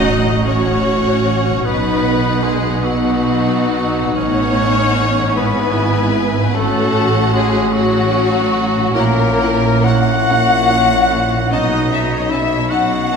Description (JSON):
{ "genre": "classical", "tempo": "42-52 BPM (dotted quarters)", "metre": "6/8", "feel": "rubato", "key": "unclear", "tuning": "A4 = 439 Hz", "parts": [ { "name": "rich studio violin section", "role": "melody", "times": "0.0-13.2 s", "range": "F#5 to A5", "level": "-28 LUFS", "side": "left 3 dB", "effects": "none" }, { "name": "rich studio violin section", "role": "second line", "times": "0.0-13.2 s", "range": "F#4 to F#5", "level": "-18 LUFS", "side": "left 4 dB", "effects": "none" }, { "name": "warm cor anglais", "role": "second line", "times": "0.0-13.2 s", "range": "F#3 to F#4", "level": "-22 LUFS", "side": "right 2 dB", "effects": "none" }, { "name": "warm studio viola section", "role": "accompaniment", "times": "0.0-13.2 s", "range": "B3 to F#4", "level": "-22 LUFS", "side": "right 2 dB", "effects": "none" }, { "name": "mellow French horn section", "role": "sustained chords", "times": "0.0-13.2 s", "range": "B3 to F#4", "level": "-22 LUFS", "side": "left 3 dB", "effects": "none" }, { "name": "concert harp", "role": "arpeggios", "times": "0.0-13.2 s", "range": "G#2 to A4", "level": "-27 LUFS", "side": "left 5 dB", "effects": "none" }, { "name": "rich studio cello section", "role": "bass", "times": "0.0-13.2 s", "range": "G#2 to B2", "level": "-20 LUFS", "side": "right 2 dB", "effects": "none" }, { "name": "warm studio double bass section", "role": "bass", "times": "0.0-13.2 s", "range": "G#1 to B1", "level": "-21 LUFS", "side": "right 4 dB", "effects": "none" } ], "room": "wet concert hall reverb, RT60 2.6 s", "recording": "recorded in a church or concert hall", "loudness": "-13 LUFS", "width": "side -6 dB against mid", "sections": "0.0-13.2 A section", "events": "none", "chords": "0.0 F#m/A; 1.6 B; 4.2 B7/A; 5.4 E/G#; 6.5 F#m/A; 8.9 F#7/A#; 11.5 B9" }